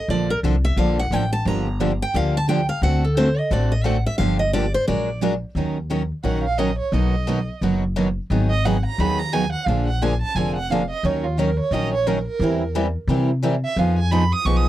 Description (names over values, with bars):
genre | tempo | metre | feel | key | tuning
acoustic string swing (jazz manouche) | 175 BPM | 4/4 | swing 60% on 8ths | G minor, Eb minor from 5.6 s | A4 = 440 Hz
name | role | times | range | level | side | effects
picked steel-string acoustic guitar | melody | 0.0-5.2 s | A4 to Bb5 | -24 LUFS | equal | none
picked steel-string acoustic guitar | accompaniment | 0.1-14.7 s | B2 to Bb4 | -25 LUFS | left 5 dB | none
picked steel-string acoustic guitar | accompaniment | 0.1-14.7 s | B2 to Bb4 | -25 LUFS | right 7 dB | none
upright bass | bass | 0.1-14.7 s | F1 to C3 | -22 LUFS | left 1 dB | none
warm violin | second line | 6.2-14.7 s | F4 to Eb6 | -25 LUFS | right 5 dB | none
room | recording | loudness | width
little or no reverb | dry, close 1970s-style studio recording | -19 LUFS | side -13 dB against mid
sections
0.0-5.6 A section; 5.6-14.7 A section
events
steel-string acoustic guitar solo 0.0-5.6; violin solo 5.6-14.7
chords
0.1 Bbmaj7; 1.5 Gm7; 2.8 D7; 4.2 Gm7; 4.9 Bbaug7; 5.6 Ebm7; 6.9 Bmaj7; 8.3 Abm7; 9.7 Bb7; 11.0 Ebm7; 12.4 C7/E; 13.8 Fm7b5